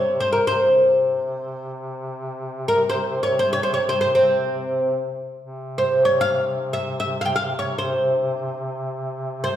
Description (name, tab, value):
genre	Turkish makam ensemble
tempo	free time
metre	none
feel	none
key	C makam hicaz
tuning	A4 = 442 Hz
part	oud	melody	0.0-9.6 s	C4 to G5	-19 LUFS	equal	none
part	warm duduk	drone	0.0-9.6 s	C3	-30 LUFS	equal	none
room	wet recital hall reverb, RT60 1.5 s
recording	recorded in a church or concert hall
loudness	-19 LUFS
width	side -11 dB against mid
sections	0.0-5.4 A section; 5.4-9.6 A section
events	none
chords	none